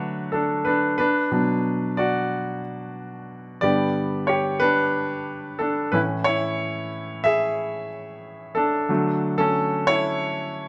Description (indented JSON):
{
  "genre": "pop",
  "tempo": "91 BPM",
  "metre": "4/4",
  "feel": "straight",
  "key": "A major",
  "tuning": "A4 = 440 Hz",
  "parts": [
    { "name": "clear baby grand piano", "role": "solo", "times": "0.0-10.7 s", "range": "G2 to E5", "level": "-24 LUFS", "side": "equal", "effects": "none" }
  ],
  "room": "moderate stone room reverb, RT60 1.0 s",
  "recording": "band playing live in one room",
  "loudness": "-23 LUFS",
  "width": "mono",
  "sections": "0.0-10.7 A section",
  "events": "grand piano solo 0.0-10.7",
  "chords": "0.0 D; 1.0 Bm; 3.6 G; 5.9 A; 8.9 D"
}